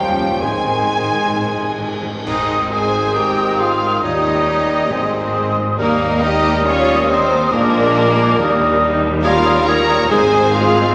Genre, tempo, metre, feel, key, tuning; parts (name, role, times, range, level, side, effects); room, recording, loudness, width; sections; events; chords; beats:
classical, dramatic, fast romantic movement for symphony orchestra; 137 BPM; 4/4; rubato; Ab major; A4 = 440 Hz
warm symphonic violin section; melody; 0.0-10.9 s; C4 to Bb5; -26 LUFS; equal
mellow cor anglais; second line; 0.0-10.9 s; Bb3 to Db5; -26 LUFS; equal
mellow hollow small flute group; second line; 0.0-10.8 s; G5 to Eb6; -23 LUFS; equal
warm clarinet; second line; 0.0-10.9 s; G4 to Db5; -28 LUFS; equal
warm symphonic violin section; second line; 0.0-10.9 s; D4 to Ab5; -26 LUFS; equal
warm bassoon; accompaniment; 0.0-10.9 s; Eb3 to Ab3; -26 LUFS; equal
mellow French horn section; sustained chords; 0.0-10.9 s; Eb3 to Bb4; -24 LUFS; equal
rich symphonic cello section; bass; 0.0-10.9 s; Eb2 to Ab3; -28 LUFS; equal
warm symphonic viola section; accompaniment; 0.1-10.9 s; C3 to Eb4; -28 LUFS; equal
rich symphonic double bass section; bass; 0.1-10.9 s; Ab1 to Eb2; -28 LUFS; equal
warm tuba; bass; 0.2-10.8 s; Ab1 to Eb2; -28 LUFS; equal
clash cymbals and concert bass drum; percussion; 2.3-3.1 s; -35 LUFS; equal
wet scoring stage reverb, RT60 2.0 s; -16 LUFS; mono
0.0-2.3 A section; 2.3-10.9 B section
band accent 2.3-2.7
0.4 Ab; 4.0 Eb7; 4.9 Ab; 5.8 Eb; 7.5 Bb7; 8.4 Eb; 9.2 Eb9; 10.1 Ab
| 0.42 0.89 1.35 1.81 | 2.27 2.72 3.16 3.60 | 4.04 4.49 4.92 5.35 | 5.79 6.23 6.66 7.10 | 7.53 7.97 8.39 8.82 | 9.25 9.68 10.11 10.54